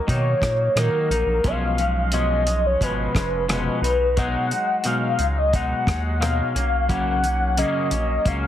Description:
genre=indie pop, bedroom pop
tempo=88 BPM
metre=4/4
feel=straight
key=B lydian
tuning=A4 = 441 Hz
part: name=warm velvety synth lead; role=melody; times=0.0-8.5 s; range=A#4 to F#5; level=-23 LUFS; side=left 1 dB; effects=lush chorus, slapback echo, plate reverb
part: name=twangy electric guitar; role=accompaniment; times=0.0-8.5 s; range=F#2 to D#4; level=-26 LUFS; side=left 2 dB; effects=analog chorus, warbly pitch drift, plate reverb
part: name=round analog bass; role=bass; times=0.1-8.5 s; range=E#1 to B2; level=-24 LUFS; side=equal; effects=none
part: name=cloth-damped thuddy drum kit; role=drums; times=0.1-8.4 s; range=hi-hat, kick drum, rim click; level=-25 LUFS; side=equal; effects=none
room=moderate studio reverb, RT60 0.5 s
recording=heavily compressed radio sound, multiband compression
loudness=-19 LUFS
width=side -11 dB against mid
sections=0.0-8.5 A section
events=none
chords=0.0 D#m7; 1.4 C#7/B; 3.8 B6; 6.6 F#maj7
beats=0.07 0.76 | 1.44 2.12 2.80 3.48 | 4.17 4.85 5.53 6.21 | 6.89 7.57 8.26

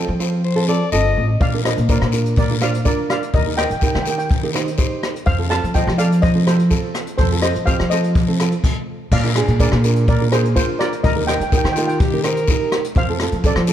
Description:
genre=calypso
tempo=125 BPM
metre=4/4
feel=straight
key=Eb major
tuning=A4 = 439 Hz
part: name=steel pan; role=melody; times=0.0-13.7 s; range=F4 to A5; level=-23 LUFS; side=equal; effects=none
part: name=nylon-string guitar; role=accompaniment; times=0.0-13.7 s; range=C4 to C5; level=-24 LUFS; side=right 3 dB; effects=none
part: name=upright bass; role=bass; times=0.0-13.7 s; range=G1 to F3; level=-19 LUFS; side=equal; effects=none
part: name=guiro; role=percussion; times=0.2-13.7 s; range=none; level=-31 LUFS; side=left 8 dB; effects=none
part: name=warm alto saxophone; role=second line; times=0.4-1.3, 11.7-12.8 s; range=F4 to Eb5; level=-23 LUFS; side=left 4 dB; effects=none
part: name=jazz brush drum kit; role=drums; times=1.4-13.7 s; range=crash cymbal, hi-hat, kick drum, rim click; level=-20 LUFS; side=left 1 dB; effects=none
room=light reverb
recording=dark, warm production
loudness=-15 LUFS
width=side -10 dB against mid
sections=0.0-9.1 A section; 9.1-13.7 A section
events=stop 8.6-9.1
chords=0.0 F7; 1.4 Bb; 3.3 Eb; 5.3 F7; 9.1 Bb; 11.0 Eb; 13.0 F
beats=0.44 0.92 | 1.41 1.89 2.37 2.85 | 3.34 3.82 4.30 4.78 | 5.26 5.75 6.23 6.71 | 7.19 7.67 8.15 8.64 | 9.12 9.60 10.08 10.56 | 11.04 11.52 12.00 12.48 | 12.96 13.44

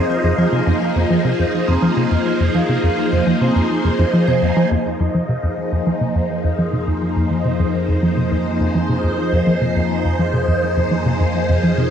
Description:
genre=ambient, sequencer-driven space music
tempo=104 BPM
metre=4/4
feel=straight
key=F minor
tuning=A4 = 440 Hz
part: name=phased string machine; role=sustained chords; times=0.0-11.9 s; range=F3 to C5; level=-19 LUFS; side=equal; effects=ensemble chorus, phaser
part: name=vibraphone with medium mallets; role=arpeggios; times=0.1-4.6 s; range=C4 to F5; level=-23 LUFS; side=moving between left 3 dB and right 4 dB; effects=auto-pan, tape echo
part: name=tight sequencer bass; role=riff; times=0.2-11.9 s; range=F2 to F3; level=-18 LUFS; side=equal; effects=wide subtle chorus, tape echo
part: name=analog drone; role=bass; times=6.3-11.9 s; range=F2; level=-25 LUFS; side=equal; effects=chorus
room=moderate spring reverb, RT60 2.3 s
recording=echo-heavy mix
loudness=-15 LUFS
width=side -8 dB against mid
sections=0.0-4.7 A section; 4.7-11.9 A section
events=none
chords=0.0 Fm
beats=| 0.09 0.67 1.25 1.82 | 2.40 2.98 3.56 4.13 | 4.71 5.29 5.86 6.44 | 7.02 7.59 8.17 8.75 | 9.32 9.90 10.48 11.05 | 11.63

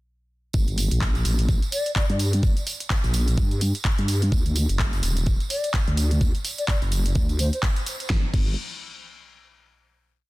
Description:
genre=bass house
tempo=127 BPM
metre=4/4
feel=swing 58% on 16ths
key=G harmonic minor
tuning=A4 = 440 Hz
part: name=vowel-sweep wobble bass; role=bass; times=0.5-8.6 s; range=Eb1 to G2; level=-22 LUFS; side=equal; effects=chorus, sidechain pumping
part: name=electronic kick drum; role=drums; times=0.5-8.4 s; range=none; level=-23 LUFS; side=equal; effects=studio reverb
part: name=tambourine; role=percussion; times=0.5-8.1 s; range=none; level=-35 LUFS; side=right 5 dB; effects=none
part: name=big-room dance drum kit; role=drums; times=0.7-8.4 s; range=crash cymbal, handclaps, hi-hat, snare drum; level=-30 LUFS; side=equal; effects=overdrive, studio reverb
part: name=mellow hollow silver concert flute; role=melody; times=1.7-2.2, 5.5-7.6 s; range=C5 to D5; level=-31 LUFS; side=left 2 dB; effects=digital delay
room=little or no reverb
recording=dense, heavily limited modern master, faint mains hum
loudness=-21 LUFS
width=side -20 dB against mid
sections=0.5-8.1 drop; 8.1-10.0 final note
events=drop 0.5-8.1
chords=0.5 Gm; 4.3 D; 8.1 N.C.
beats=| 0.54 1.01 1.49 1.96 | 2.43 2.90 3.38 3.85 | 4.32 4.79 5.27 5.74 | 6.21 6.68 7.16 7.63 | 8.10

